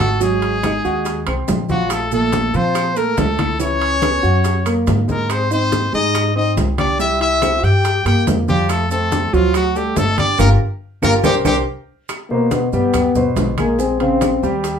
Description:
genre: Afro-Cuban jazz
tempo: 141 BPM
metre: 4/4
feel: straight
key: unclear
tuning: A4 = 440 Hz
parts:
  - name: brilliant trumpet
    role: melody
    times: 0.0-11.6 s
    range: F4 to G5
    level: -20 LUFS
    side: left 2 dB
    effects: none
  - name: mellow trombone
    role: second line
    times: 0.0-14.6 s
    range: F3 to G4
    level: -22 LUFS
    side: left 4 dB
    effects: none
  - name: warm concert grand piano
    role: accompaniment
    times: 0.0-14.8 s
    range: Bb2 to Ab5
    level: -21 LUFS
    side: right 2 dB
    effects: none
  - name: upright bass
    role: bass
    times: 0.0-14.8 s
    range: G1 to Bb2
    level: -20 LUFS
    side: equal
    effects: none
  - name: bongos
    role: percussion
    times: 0.0-14.8 s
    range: none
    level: -29 LUFS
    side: left 2 dB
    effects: none
  - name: claves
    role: percussion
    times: 0.0-14.4 s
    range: none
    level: -33 LUFS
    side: right 6 dB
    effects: none
  - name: congas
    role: percussion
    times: 0.0-14.8 s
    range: none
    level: -24 LUFS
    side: left 1 dB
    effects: none
  - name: maracas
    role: percussion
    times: 0.0-14.8 s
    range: none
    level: -34 LUFS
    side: right 6 dB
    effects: none
  - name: timbales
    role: percussion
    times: 0.0-14.8 s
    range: none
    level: -25 LUFS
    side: right 3 dB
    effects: none
room: wet studio ambience, RT60 0.5 s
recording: band playing live in one room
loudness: -14 LUFS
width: side -7 dB against mid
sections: 0.0-12.1 A section; 12.1-14.8 B section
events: band accent 10.4-12.1; drum fill 11.5-12.1; trombone solo 12.1-14.8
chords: 0.2 Ab9; 1.9 Bbsus2; 3.6 Dbm7; 4.5 Gbadd9; 5.3 Abmaj7; 7.0 C7; 8.7 F; 9.5 D; 10.4 Gm7; 11.2 C5; 13.8 Bbm11

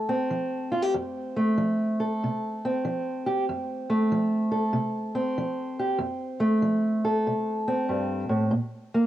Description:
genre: blues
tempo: 95 BPM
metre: 4/4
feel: swing 65% on 8ths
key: F major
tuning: A4 = 437 Hz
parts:
  - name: fingerpicked steel-string acoustic guitar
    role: solo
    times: 0.0-9.1 s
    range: F2 to A4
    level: -24 LUFS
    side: equal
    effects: cassette tape
room: light reverb, small room ambience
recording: home recording on cassette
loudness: -24 LUFS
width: side -13 dB against mid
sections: 0.0-9.1 A section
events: none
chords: 0.0 F; 8.5 N.C.

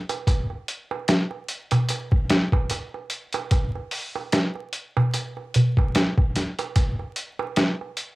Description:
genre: trip hop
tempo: 74 BPM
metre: 4/4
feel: swing 56% on 16ths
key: none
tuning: none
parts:
  - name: trip hop sampler-style drum kit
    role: drums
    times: 0.1-8.2 s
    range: hi-hat, kick drum, snare drum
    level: -22 LUFS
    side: equal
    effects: studio reverb, cassette tape
  - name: darbuka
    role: percussion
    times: 0.1-7.9 s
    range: none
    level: -26 LUFS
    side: right 2 dB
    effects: none
room: wet booth ambience, RT60 0.2 s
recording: home recording on cassette, vinyl crackle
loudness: -22 LUFS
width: side -19 dB against mid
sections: 0.0-8.2 A section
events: none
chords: none

